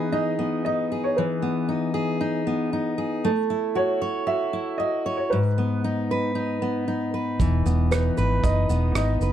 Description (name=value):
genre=acoustic pop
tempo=116 BPM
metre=4/4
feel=straight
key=E major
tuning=A4 = 440 Hz
part: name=dark upright piano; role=melody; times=0.0-9.3 s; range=B4 to E5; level=-27 LUFS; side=right 1 dB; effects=none
part: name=fingerpicked steel-string acoustic guitar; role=accompaniment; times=0.0-9.3 s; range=G#2 to C#5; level=-24 LUFS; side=left 1 dB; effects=none
part: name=vintage muted fingered electric bass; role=bass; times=7.4-9.3 s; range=E1 to G#1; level=-22 LUFS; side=right 1 dB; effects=none
part: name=loose indie drum kit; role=drums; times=7.4-9.3 s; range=kick drum, rim click, shaker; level=-27 LUFS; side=right 2 dB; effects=none
room=little or no reverb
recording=dark, warm production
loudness=-22 LUFS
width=side -10 dB against mid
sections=0.0-9.3 A section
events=none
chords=0.0 Emaj7; 3.3 A6; 5.3 G#m; 7.4 Emaj7